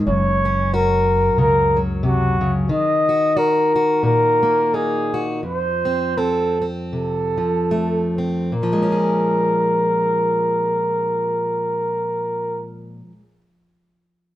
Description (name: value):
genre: folk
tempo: 70-91 BPM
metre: 4/4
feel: swing 58% on 8ths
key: Bb minor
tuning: A4 = 439 Hz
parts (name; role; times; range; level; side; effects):
- fingerpicked plugged-in steel-string acoustic guitar; accompaniment; 0.0-13.4 s; F2 to Ab4; -22 LUFS; left 1 dB; none
- upright bass; bass; 0.0-2.7 s; Gb1 to Db2; -23 LUFS; equal; none
- warm flugelhorn; melody; 0.1-12.7 s; Gb4 to Eb5; -19 LUFS; equal; none
room: moderate stone room reverb, RT60 1.1 s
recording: band playing live in one room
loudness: -17 LUFS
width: side -13 dB against mid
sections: 0.0-8.5 A section; 8.5-11.9 B section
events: slowing down 2.7-8.5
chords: 0.1 Gb; 2.7 Ebm; 5.4 F; 8.5 Bbm7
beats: | 0.06 0.72 1.38 2.04 | 2.70 3.37 4.04 4.73 | 5.43 6.16 6.91 7.70 | 8.53 9.38 10.23 11.08